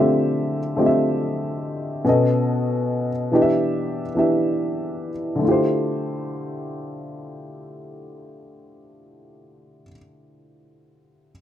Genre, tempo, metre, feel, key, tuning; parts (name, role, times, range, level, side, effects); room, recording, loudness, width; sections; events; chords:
hip hop; 71 BPM; 4/4; swing 57% on 16ths; D dorian; A4 = 441 Hz
dark upright piano; accompaniment; 0.0-11.3 s; B2 to E5; -20 LUFS; equal; plate reverb
wet small room reverb, RT60 0.5 s; rough home demo mix; -19 LUFS; side -11 dB against mid
0.0-5.4 A section; 5.4-8.8 B section
0.0 Dm11; 2.0 B7; 3.3 Em7; 5.4 Dm11